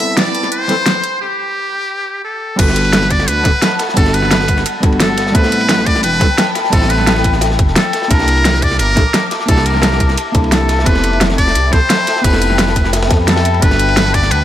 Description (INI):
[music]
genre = liquid drum and bass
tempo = 174 BPM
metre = 4/4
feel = straight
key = G major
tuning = A4 = 441 Hz
[part]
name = trumpet with metal mute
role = melody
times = 0.0-14.4 s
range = G4 to E5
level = -17 LUFS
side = equal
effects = ping-pong delay
[part]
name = hollow-body jazz guitar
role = accompaniment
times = 0.0-14.4 s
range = G3 to A5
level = -20 LUFS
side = equal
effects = digital delay
[part]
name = glassy FM pad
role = sustained chords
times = 0.0-14.4 s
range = E5 to D6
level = -22 LUFS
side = left 4 dB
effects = ensemble chorus, built-in reverb, phaser
[part]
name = smooth synth bass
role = bass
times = 0.0-14.4 s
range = D1 to F2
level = -17 LUFS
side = equal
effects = high-pass filter
[part]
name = pop drum kit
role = drums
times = 0.0-14.4 s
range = crash cymbal, hi-hat, snare drum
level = -17 LUFS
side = equal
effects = overdrive
[part]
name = crunchy breakbeat drum kit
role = drums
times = 2.6-14.4 s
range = hi-hat, ride cymbal, snare drum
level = -22 LUFS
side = equal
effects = high-pass filter on cymbals, high-pass filter on hats, high-pass filter on snare, high-pass filter on room
[part]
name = electronic kick drum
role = drums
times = 2.6-14.2 s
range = none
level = -14 LUFS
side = equal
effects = overdrive
[sound]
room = light reverb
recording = none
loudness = -11 LUFS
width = side -11 dB against mid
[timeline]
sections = 0.0-2.6 A section; 2.6-14.4 B section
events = build-up 0.0-2.6; break 1.2-2.6; drop 2.6-14.4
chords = 0.0 Am9; 2.6 Gmaj9; 5.3 Am9; 8.1 C13; 10.9 Fmaj9#11; 13.6 Gmaj9